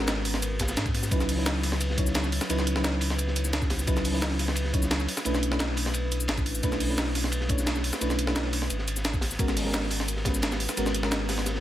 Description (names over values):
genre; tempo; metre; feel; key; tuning
liquid drum and bass; 174 BPM; 4/4; straight; unclear; A4 = 441 Hz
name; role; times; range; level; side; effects
mellow FM electric piano; accompaniment; 0.0-11.6 s; F#3 to C#5; -30 LUFS; left 1 dB; chorus, tape echo
sub bass with octave; bass; 0.0-11.6 s; G#1 to G#2; -30 LUFS; equal; none
crunchy breakbeat drum kit; drums; 0.0-11.6 s; hi-hat, ride cymbal, snare drum; -34 LUFS; equal; high-pass filter on cymbals, high-pass filter on hats, high-pass filter on snare, high-pass filter on room
breakbeat sampler-style drum kit; drums; 0.1-11.5 s; hi-hat, shaker, snare drum; -30 LUFS; right 1 dB; none
electronic kick drum; drums; 0.6-10.3 s; none; -29 LUFS; equal; none
room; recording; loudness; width
light reverb; none; -24 LUFS; side -13 dB against mid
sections
0.0-11.6 A section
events
none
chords
0.0 G#m11; 1.1 C#m11; 5.1 Bm11; 8.7 G#m11